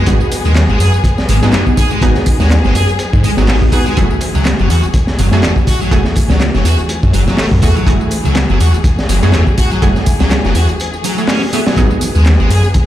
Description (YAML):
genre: breakbeat, breaks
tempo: 123 BPM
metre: 4/4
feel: swing 56% on 16ths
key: unclear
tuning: A4 = 440 Hz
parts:
  - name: warm studio string section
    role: sustained chords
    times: 0.0-12.9 s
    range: E3 to G#4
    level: -22 LUFS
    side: left 2 dB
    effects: sidechain pumping
  - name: thick fuzz guitar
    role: riff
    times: 0.0-12.6 s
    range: F#3 to G#4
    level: -19 LUFS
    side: equal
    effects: distortion, tape echo
  - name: orchestra-hit-like synth stab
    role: stabs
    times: 0.0-11.9 s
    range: A3 to G#4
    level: -20 LUFS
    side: right 2 dB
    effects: built-in reverb, tape echo
  - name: phased detuned saw bass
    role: bass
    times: 0.1-12.6 s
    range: F#1 to G#2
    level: -12 LUFS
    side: equal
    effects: phaser
  - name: crunchy breakbeat drum kit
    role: drums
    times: 0.1-12.9 s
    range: hi-hat, kick drum, snare drum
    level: -15 LUFS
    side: equal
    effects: none
  - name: house drum kit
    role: drums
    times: 0.1-12.9 s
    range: handclaps, hi-hat, tambourine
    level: -25 LUFS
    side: right 1 dB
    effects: none
  - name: congas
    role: percussion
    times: 11.9-12.1 s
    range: none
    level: -22 LUFS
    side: right 2 dB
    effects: none
room: small room ambience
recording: played on a big sound system in a bare room, large studio reverb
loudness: -10 LUFS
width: side -13 dB against mid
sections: 0.0-12.9 A section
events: break 10.8-11.8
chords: 0.0 G#m7; 4.0 F#m9; 11.8 G#m7